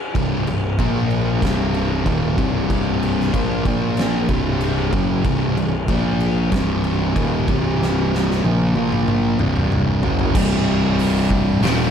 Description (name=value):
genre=stoner and doom metal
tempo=94 BPM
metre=4/4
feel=straight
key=C minor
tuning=A4 = 439 Hz
part: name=thick fuzz guitar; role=riff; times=0.1-11.9 s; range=C2 to Bb3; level=-19 LUFS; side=equal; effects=distortion
part: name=fuzz picked electric bass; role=bass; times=0.1-11.9 s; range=C1 to Bb1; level=-24 LUFS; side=equal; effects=overdrive
part: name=oversized low-tuned drum kit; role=drums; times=0.2-11.8 s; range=crash cymbal, hi-hat, kick drum, snare drum, toms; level=-22 LUFS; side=equal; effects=none
room=light reverb, small room ambience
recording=dark, warm production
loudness=-16 LUFS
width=side -8 dB against mid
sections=0.0-10.3 A section; 10.3-11.9 B section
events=drum fill 7.8-10.3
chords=0.0 C5; 0.8 Bb5; 1.4 Cm; 3.7 Bb5; 4.3 C5; 5.9 Bb5; 6.5 Cm; 8.8 Bb5; 9.4 C5